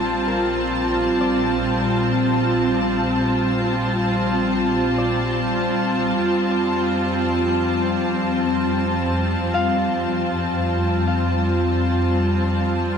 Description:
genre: ambient.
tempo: free time.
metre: none.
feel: none.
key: Bb major.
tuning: A4 = 440 Hz.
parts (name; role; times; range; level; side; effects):
rich studio string section; sustained chords; 0.0-13.0 s; G3 to A5; -19 LUFS; equal; none.
dark symphonic double bass section; bass; 0.0-13.0 s; Bb1 to F2; -26 LUFS; equal; none.
concert harp; arpeggios; 0.3-11.6 s; Bb4 to F5; -30 LUFS; left 3 dB; ping-pong delay.
room: wet huge ambient reverb, RT60 7.9 s.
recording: none.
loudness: -18 LUFS.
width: side -7 dB against mid.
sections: 0.0-13.0 A section.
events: none.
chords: 0.0 Bb6; 6.2 Fadd9.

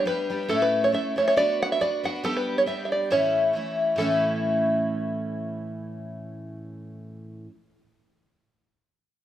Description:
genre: celtic folk, Celtic polka.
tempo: 138 BPM.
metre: 2/4.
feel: swing 55% on 8ths.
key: A mixolydian.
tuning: A4 = 440 Hz.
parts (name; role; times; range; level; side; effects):
open-back banjo; melody; 0.0-7.1 s; A4 to F#5; -24 LUFS; right 2 dB; none.
picked twelve-string acoustic guitar; accompaniment; 0.0-7.5 s; A2 to B4; -26 LUFS; left 1 dB; none.
room: light reverb.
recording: close, detailed microphones.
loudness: -22 LUFS.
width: side -11 dB against mid.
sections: 0.0-4.0 A section; 4.0-5.7 B section.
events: none.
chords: 0.5 A; 1.4 Bm; 2.2 G; 3.1 A.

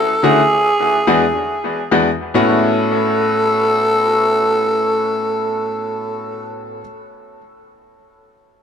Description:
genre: reggae.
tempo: 71 BPM.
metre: 4/4.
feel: swing 60% on 16ths.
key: A major.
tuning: A4 = 440 Hz.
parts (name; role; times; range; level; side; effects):
growling tenor saxophone; melody; 0.0-6.5 s; G#4 to A4; -16 LUFS; equal; tape echo.
bright grand piano; accompaniment; 0.2-6.8 s; E2 to F#4; -18 LUFS; left 2 dB; dub echo.
room: moderate spring reverb, RT60 1.2 s.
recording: none.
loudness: -13 LUFS.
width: side -7 dB against mid.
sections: 0.0-2.3 A section; 2.3-5.7 B section.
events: none.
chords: 0.0 Dmaj7; 0.7 E7; 2.3 A6.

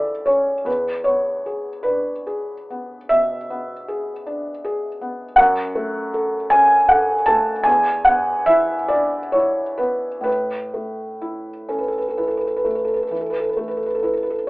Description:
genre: classical, romantic nocturne for solo piano.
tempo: 42-54 BPM (dotted quarters).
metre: 12/8.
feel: rubato.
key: A major.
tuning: A4 = 440 Hz.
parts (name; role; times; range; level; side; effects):
felt-muted upright piano; solo; 0.0-14.5 s; E2 to A5; -18 LUFS; equal; none.
room: light reverb.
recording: telephone sound.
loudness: -17 LUFS.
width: side -22 dB against mid.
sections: 0.0-14.5 A section.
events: none.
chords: 0.0 A; 0.7 E7; 5.4 F#m; 7.7 E5; 10.3 A.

